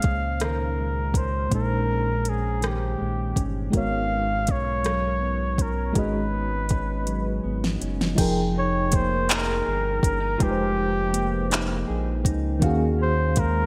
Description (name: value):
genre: slow six-eight R&B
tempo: 54 BPM (dotted quarters)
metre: 6/8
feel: straight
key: F phrygian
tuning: A4 = 440 Hz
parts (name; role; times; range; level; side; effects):
- warm flugelhorn; melody; 0.0-13.7 s; G4 to F5; -30 LUFS; equal; delay
- mellow electric guitar; second line; 0.0-13.7 s; Ab2 to Ab4; -33 LUFS; equal; analog chorus
- mellow FM electric piano; accompaniment; 0.0-13.7 s; Bb2 to G5; -32 LUFS; equal; chorus, tremolo
- round analog bass; bass; 0.0-13.7 s; F1 to Eb2; -30 LUFS; equal; none
- smooth R&B drum kit; drums; 0.0-13.5 s; crash cymbal, handclaps, hi-hat, kick drum, rim click, snare drum; -27 LUFS; equal; overdrive, gated reverb
room: moderate lush hall reverb, RT60 2.2 s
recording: bright 1980s-style digital production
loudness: -24 LUFS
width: mono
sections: 0.0-8.2 A section; 8.2-13.7 B section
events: drum fill 7.1-8.2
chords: 0.0 Bbm11; 3.7 Abm11; 8.2 Fm11; 12.6 Ebm11